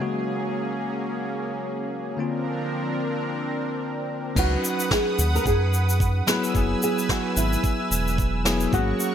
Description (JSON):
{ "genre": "sunset chillout", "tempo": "110 BPM", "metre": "4/4", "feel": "swing 58% on 16ths", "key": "unclear", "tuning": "A4 = 440 Hz", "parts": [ { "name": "bell-like tine electric piano", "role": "accompaniment", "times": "0.0-9.1 s", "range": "Db3 to Cb5", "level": "-28 LUFS", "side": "moving between left 4 dB and right 3 dB", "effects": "auto-pan, digital delay" }, { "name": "lush unison pad", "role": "sustained chords", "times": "0.0-9.1 s", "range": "F3 to Fb6", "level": "-29 LUFS", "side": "right 1 dB", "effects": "chorus" }, { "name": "flamenco guitar", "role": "melody", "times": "4.4-9.1 s", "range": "Fb4 to Cb5", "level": "-28 LUFS", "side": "right 1 dB", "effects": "wide subtle chorus, digital delay" }, { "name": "round analog bass", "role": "bass", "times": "4.4-8.9 s", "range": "Fb1 to Gb2", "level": "-23 LUFS", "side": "equal", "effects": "tube saturation" }, { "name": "electronic kick drum", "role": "drums", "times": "4.4-8.9 s", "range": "none", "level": "-25 LUFS", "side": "equal", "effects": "none" }, { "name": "jazz brush drum kit", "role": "drums", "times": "4.4-9.1 s", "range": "crash cymbal, shaker, snare drum", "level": "-28 LUFS", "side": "left 2 dB", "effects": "gated reverb" } ], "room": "moderate lush hall reverb, RT60 1.7 s, small room ambience", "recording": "bright 1980s-style digital production", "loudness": "-22 LUFS", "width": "side -9 dB against mid", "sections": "0.0-4.4 A section; 4.4-9.1 B section", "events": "none", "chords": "0.0 Ab9sus4; 2.2 C9sus4; 4.4 Db9sus4; 6.3 Gb9sus4" }